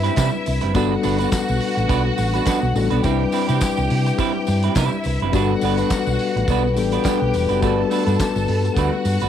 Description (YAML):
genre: disco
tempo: 105 BPM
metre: 4/4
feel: swing 56% on 16ths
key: G major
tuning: A4 = 440 Hz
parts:
  - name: clear studio string section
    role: second line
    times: 0.0-9.3 s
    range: E4 to A5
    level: -27 LUFS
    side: right 1 dB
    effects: cassette tape
  - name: mellow tine electric piano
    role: accompaniment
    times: 0.0-9.3 s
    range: G3 to B4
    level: -23 LUFS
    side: left 8 dB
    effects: medium stereo tremolo, cassette tape
  - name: semi-hollow electric guitar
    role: accompaniment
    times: 0.0-9.3 s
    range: G3 to B4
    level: -24 LUFS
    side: right 12 dB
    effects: cassette tape
  - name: mellow French horn section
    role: sustained chords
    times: 0.0-9.3 s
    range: C3 to B4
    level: -28 LUFS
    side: left 7 dB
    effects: stereo widening, cassette tape
  - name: hollow-body short-scale fingered electric bass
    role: bass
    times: 0.0-9.3 s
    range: E1 to C3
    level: -22 LUFS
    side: right 1 dB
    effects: none
  - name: damped 70s drum kit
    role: drums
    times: 0.0-9.3 s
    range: handclaps, hi-hat, kick drum, snare drum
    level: -26 LUFS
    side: right 1 dB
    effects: cassette tape
  - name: tambourine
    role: percussion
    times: 0.1-9.3 s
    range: none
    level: -36 LUFS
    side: left 10 dB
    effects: none
room: light reverb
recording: home recording on cassette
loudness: -17 LUFS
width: side -9 dB against mid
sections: 0.0-9.3 A section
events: none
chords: 0.0 Cmaj7; 0.7 Gmaj7; 3.0 Cmaj7; 5.3 Gmaj9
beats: 0.17 | 0.75 1.32 1.89 2.47 | 3.04 3.61 4.19 4.76 | 5.33 5.90 6.48 7.05 | 7.62 8.19 8.77